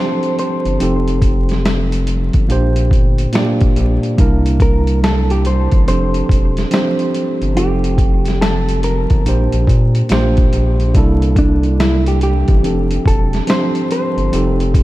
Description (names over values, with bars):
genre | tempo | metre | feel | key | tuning
lo-fi hip hop | 71 BPM | 4/4 | swing 63% on 16ths | F major | A4 = 440 Hz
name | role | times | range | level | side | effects
hollow-body jazz guitar | melody | 0.0-14.7 s | D4 to C5 | -22 LUFS | equal | low-pass filter, ping-pong delay
tine electric piano | accompaniment | 0.0-14.8 s | Bb2 to D5 | -18 LUFS | right 1 dB | low-pass filter
lo-fi sampler-style drum kit | drums | 0.2-14.8 s | hi-hat, kick drum, snare drum | -16 LUFS | equal | none
round analog bass | bass | 0.7-14.8 s | E1 to Bb2 | -16 LUFS | equal | none
room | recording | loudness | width
light reverb | vinyl crackle | -12 LUFS | side -16 dB against mid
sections
0.0-14.8 A section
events
none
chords
0.0 F69; 0.8 F9; 2.5 Bb6; 4.2 C9; 5.9 F69; 7.6 F9; 9.3 Bb6; 10.9 C13; 12.6 F69; 14.3 F9